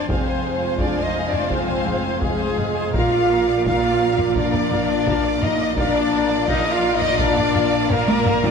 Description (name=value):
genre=cinematic, epic orchestral film score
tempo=85 BPM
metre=4/4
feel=straight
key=unclear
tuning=A4 = 444 Hz
part: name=rich studio violin section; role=melody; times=0.0-8.5 s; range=Ab4 to F5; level=-26 LUFS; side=left 3 dB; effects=none
part: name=mellow hollow silver concert flute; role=second line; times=0.0-8.5 s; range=Ab4 to F5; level=-29 LUFS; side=left 2 dB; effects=none
part: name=warm symphonic violin section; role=second line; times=0.0-8.5 s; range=D5 to D6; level=-31 LUFS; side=left 3 dB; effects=none
part: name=rich symphonic viola section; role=accompaniment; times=0.0-8.5 s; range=Ab4 to Ab5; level=-30 LUFS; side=right 2 dB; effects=none
part: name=mellow French horn section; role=sustained chords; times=0.0-8.4 s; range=Ab3 to F4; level=-22 LUFS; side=left 2 dB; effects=none
part: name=warm studio string section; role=sustained chords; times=0.0-8.5 s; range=Ab3 to F5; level=-28 LUFS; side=equal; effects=none
part: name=rich symphonic cello section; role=bass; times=0.0-8.5 s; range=F2 to Bb2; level=-28 LUFS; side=right 4 dB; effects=none
part: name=rich symphonic double bass section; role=bass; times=0.0-8.5 s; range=F1 to Bb1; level=-29 LUFS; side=right 5 dB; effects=none
part: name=taiko ensemble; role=drums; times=0.1-8.5 s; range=none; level=-25 LUFS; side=equal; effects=none
room=wet scoring stage reverb, RT60 1.9 s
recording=none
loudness=-17 LUFS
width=side -6 dB against mid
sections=0.0-8.5 A section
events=drum fill 7.9-8.5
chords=0.0 Fm; 2.9 Bb